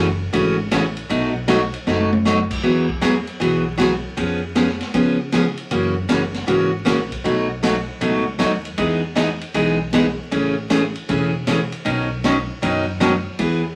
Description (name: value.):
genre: country, western swing.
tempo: 156 BPM.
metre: 4/4.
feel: swing 66% on 8ths.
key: E major.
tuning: A4 = 441 Hz.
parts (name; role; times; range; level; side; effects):
picked steel-string acoustic guitar; accompaniment; 0.0-13.6 s; B2 to G#4; -21 LUFS; equal; none.
upright bass; bass; 0.0-13.8 s; E1 to C#3; -31 LUFS; equal; none.
swinging big-band drum kit; drums; 0.3-13.5 s; crash cymbal, hi-hat, kick drum, ride cymbal, snare drum, toms; -28 LUFS; equal; none.
room: moderate club reverb, RT60 0.6 s.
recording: vinyl crackle.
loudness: -20 LUFS.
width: mono.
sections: 0.0-2.6 A section; 2.6-13.8 B section.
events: drum fill 1.9-2.3.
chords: 0.0 F#m7; 1.1 B7; 2.6 Eadd9; 4.2 C#7/E#; 5.7 F#7; 7.2 B7; 8.8 Emaj7; 10.3 Amaj7; 11.9 Badd9.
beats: 0.33 0.72 | 1.10 1.49 1.87 2.25 | 2.64 3.02 3.41 3.79 | 4.17 4.56 4.94 5.33 | 5.71 6.10 6.48 6.87 | 7.25 7.63 8.02 8.40 | 8.78 9.17 9.55 9.94 | 10.32 10.70 11.09 11.47 | 11.85 12.24 12.62 13.00 | 13.39.